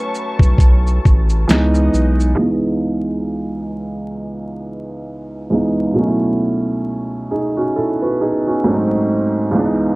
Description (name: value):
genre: lo-fi hip hop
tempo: 67 BPM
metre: 4/4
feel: swing 58% on 16ths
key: C# minor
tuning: A4 = 440 Hz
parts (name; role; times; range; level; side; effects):
- felt-muted upright piano; accompaniment; 0.0-10.0 s; C#2 to B4; -17 LUFS; right 1 dB; cassette tape, low-pass filter
- lush unison pad; sustained chords; 0.0-2.4 s; B4 to C#6; -28 LUFS; left 2 dB; chorus, phaser, low-pass filter
- dusty soul sampler-style drum kit; drums; 0.1-2.4 s; hi-hat, kick drum, shaker, snare drum; -12 LUFS; equal; none
- saturated sub bass; bass; 0.4-2.3 s; A1 to C#2; -15 LUFS; equal; none
room: light reverb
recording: dark, warm production, vinyl crackle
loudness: -14 LUFS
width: side -23 dB against mid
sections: 0.0-2.4 A section; 2.4-10.0 B section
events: none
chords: 0.0 B9sus4; 1.5 C#m9; 2.4 C#m7; 6.0 B9sus4; 8.7 G#7b9